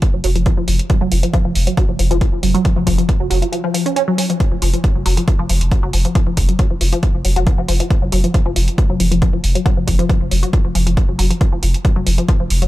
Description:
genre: driving peak-time techno.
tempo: 137 BPM.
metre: 4/4.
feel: straight.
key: unclear.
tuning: A4 = 441 Hz.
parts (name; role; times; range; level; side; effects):
electronic hi-hat; drums; 0.0-12.7 s; none; -24 LUFS; right 2 dB; sidechain pumping on hats.
electronic kick drum; drums; 0.0-12.4 s; none; -16 LUFS; equal; none.
resonant blip pluck; riff; 0.1-12.7 s; F3 to Db4; -20 LUFS; left 1 dB; chorus, phaser, sidechain pumping, digital delay.
saturated sub bass; bass; 0.1-12.7 s; F1; -18 LUFS; equal; overdrive, sidechain pumping, low-pass filter.
room: digital ambience.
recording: none.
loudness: -14 LUFS.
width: side -16 dB against mid.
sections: 0.0-12.7 A section.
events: kick drops out 3.5-4.4.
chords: 0.0 Dbadd11/F (rootless).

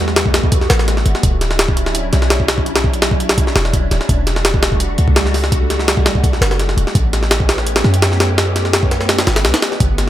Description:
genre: drum and bass, jungle.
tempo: 168 BPM.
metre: 4/4.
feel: straight.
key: unclear.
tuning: A4 = 440 Hz.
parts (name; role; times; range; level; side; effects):
soft string machine; sustained chords; 0.0-10.1 s; F#3 to G4; -22 LUFS; equal; phaser, ensemble chorus.
warm 808-style bass; bass; 0.0-10.1 s; D1 to F#2; -17 LUFS; equal; none.
jungle sampler-style drum kit; drums; 0.1-10.1 s; hi-hat, kick drum, snare drum; -15 LUFS; equal; none.
shaker; drums; 9.8-10.1 s; none; barely audible; none; none.
room: studio reverb.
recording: none.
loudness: -12 LUFS.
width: side -13 dB against mid.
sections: 0.0-10.1 A section.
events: none.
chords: 0.0 Gmaj9; 1.2 Dmaj9; 4.1 Em11; 6.9 A9.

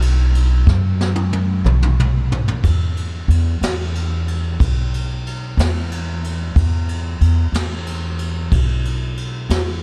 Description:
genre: slow blues.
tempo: 61 BPM (dotted quarters).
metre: 12/8.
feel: straight.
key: unclear.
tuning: A4 = 443 Hz.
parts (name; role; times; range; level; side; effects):
upright bass; bass; 0.0-9.8 s; B1 to F#2; -20 LUFS; equal; none.
jazz brush drum kit; drums; 0.0-9.7 s; kick drum, ride cymbal, snare drum, toms; -25 LUFS; equal; none.
room: little or no reverb.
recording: none.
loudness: -19 LUFS.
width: mono.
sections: 0.0-2.6 A section; 2.6-9.8 B section.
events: drum fill 0.7-2.6.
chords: none.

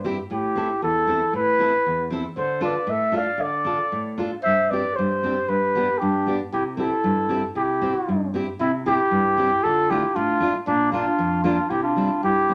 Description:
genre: alpine folk, alpine dance band.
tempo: 116 BPM.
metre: 2/4.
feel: straight.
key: C major.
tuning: A4 = 438 Hz.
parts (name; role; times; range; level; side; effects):
mellow flugelhorn; melody; 0.0-12.5 s; D4 to F5; -24 LUFS; equal; none.
fingerpicked steel-string acoustic guitar; accompaniment; 0.0-12.5 s; E2 to A4; -28 LUFS; equal; none.
dark clarinet; second line; 0.3-12.5 s; Bb3 to D5; -30 LUFS; equal; none.
room: wet studio reverb, RT60 0.6 s.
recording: none.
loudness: -22 LUFS.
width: mono.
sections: 0.3-8.6 A section; 8.6-12.5 B section.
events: none.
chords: 0.3 Am; 2.4 Dm; 4.4 Gsus4; 5.5 G; 6.5 C; 9.6 Dm; 10.7 Bb; 11.7 C.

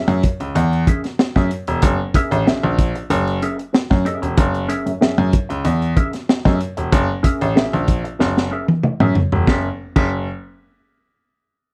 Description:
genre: funk.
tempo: 94 BPM.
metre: 4/4.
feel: straight.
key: F# mixolydian.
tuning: A4 = 440 Hz.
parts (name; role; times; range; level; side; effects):
mellow electric guitar; accompaniment; 0.0-10.2 s; C#4 to E5; -27 LUFS; equal; wah.
bright grand piano; bass; 0.1-10.3 s; E1 to F#2; -21 LUFS; equal; none.
crunchy breakbeat drum kit; drums; 0.1-10.1 s; crash cymbal, hi-hat, kick drum, snare drum, toms; -19 LUFS; equal; none.
room: small room ambience.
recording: dry, close 1970s-style studio recording.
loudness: -18 LUFS.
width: mono.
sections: 0.0-9.5 A section; 9.5-11.7 B section.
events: drum fill 8.2-9.5.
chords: 0.0 F#9.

